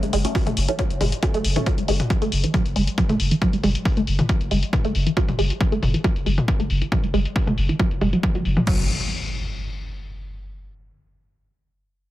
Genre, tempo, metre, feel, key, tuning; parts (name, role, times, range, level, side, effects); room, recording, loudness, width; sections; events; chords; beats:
driving peak-time techno; 137 BPM; 4/4; straight; F# minor; A4 = 440 Hz
resonant blip pluck; riff; 0.0-8.9 s; E3 to A3; -24 LUFS; right 1 dB; phaser, sidechain pumping, digital delay
filtered dub chord stab; stabs; 0.0-1.6 s; F#3 to C#4; -30 LUFS; right 1 dB; phaser, lush chorus, sidechain pumping, digital delay
saturated sub bass; bass; 0.0-8.9 s; F#1; -24 LUFS; equal; overdrive, sidechain pumping, low-pass filter
punchy analog drum machine; drums; 0.0-8.8 s; crash cymbal, hi-hat, toms; -28 LUFS; left 2 dB; sidechain pumping on hats, low-pass filter on hats, sidechain pumping on toms, low-pass filter on toms, sidechain pumping on cymbals, low-pass filter on cymbals
electronic kick drum; drums; 0.3-8.8 s; -23 LUFS; equal
impact; sound effects; 8.7-10.4 s; -30 LUFS; equal
digital ambience; heavily compressed radio sound, multiband compression; -19 LUFS; side -15 dB against mid
0.0-8.7 A section; 8.7-10.4 B section
filter sweep on drum 0.0-8.7; filter sweep on synth arpeggio sound 0.0-8.7
0.0 F#m; 8.7 N.C.
0.35 0.79 1.23 | 1.66 2.10 2.54 2.98 | 3.42 3.85 4.29 4.73 | 5.17 5.61 6.04 6.48 | 6.92 7.36 7.80 8.23 | 8.67 9.11 9.55 9.99